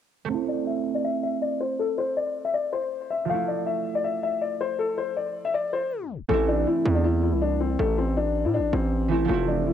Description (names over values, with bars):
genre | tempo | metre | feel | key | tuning
hip hop, trap | 160 BPM | 4/4 | half-time | A minor | A4 = 444 Hz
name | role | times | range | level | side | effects
concert harp | accompaniment | 0.2-9.7 s | E3 to E4 | -30 LUFS | right 11 dB | low-pass filter
dark grand piano | melody | 0.3-9.7 s | A3 to A5 | -25 LUFS | left 6 dB | low-pass filter, cassette tape, tape echo
distorted 808-style bass | bass | 6.3-9.7 s | E1 to A2 | -25 LUFS | right 2 dB | distortion
room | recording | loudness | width
light reverb | home recording on cassette, tape stop | -23 LUFS | side -9 dB against mid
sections
0.3-6.3 A section; 6.3-9.7 B section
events
filter sweep 0.3-6.3; tape stop 5.9-6.3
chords
0.3 Am; 3.3 Fmaj7; 6.3 Am